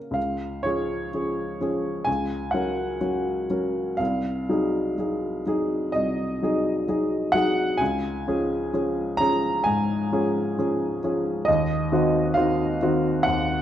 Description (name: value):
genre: classical, romantic nocturne for solo piano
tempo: 64 BPM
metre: 4/4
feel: uneven beats, rubato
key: Db major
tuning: A4 = 440 Hz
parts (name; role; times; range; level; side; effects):
- warm upright piano; solo; 0.0-13.6 s; C2 to Bb5; -22 LUFS; equal; none
room: moderate recital hall reverb, RT60 1.4 s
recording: dark, warm production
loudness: -22 LUFS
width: side -11 dB against mid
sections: 0.2-13.6 A section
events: none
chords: 0.2 Db; 2.1 Gb/Db; 4.0 Ab7/C; 7.8 Db; 11.5 Cdim/Eb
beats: | 0.16 1.13 2.07 3.01 | 3.99 4.98 5.94 6.88 | 7.80 8.73 9.65 10.58 | 11.47 12.36 13.25